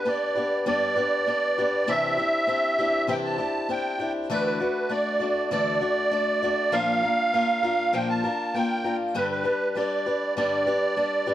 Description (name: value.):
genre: rock.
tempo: 99 BPM.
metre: 4/4.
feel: straight.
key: G major.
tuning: A4 = 440 Hz.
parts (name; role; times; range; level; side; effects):
musette accordion; melody; 0.0-11.3 s; B4 to A5; -24 LUFS; right 2 dB; digital delay.
picked swing-style acoustic guitar; accompaniment; 0.0-11.3 s; G2 to D5; -27 LUFS; left 3 dB; none.
room: light reverb.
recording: dark, warm production.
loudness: -22 LUFS.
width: side -13 dB against mid.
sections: 0.0-11.3 A section.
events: none.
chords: 0.0 G; 1.9 Cadd9; 4.3 Dadd9; 6.7 Bb; 9.1 G.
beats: 0.06 0.67 1.27 | 1.88 2.48 3.09 3.70 | 4.30 4.91 5.51 6.12 | 6.72 7.33 7.94 8.54 | 9.15 9.75 10.36 10.96.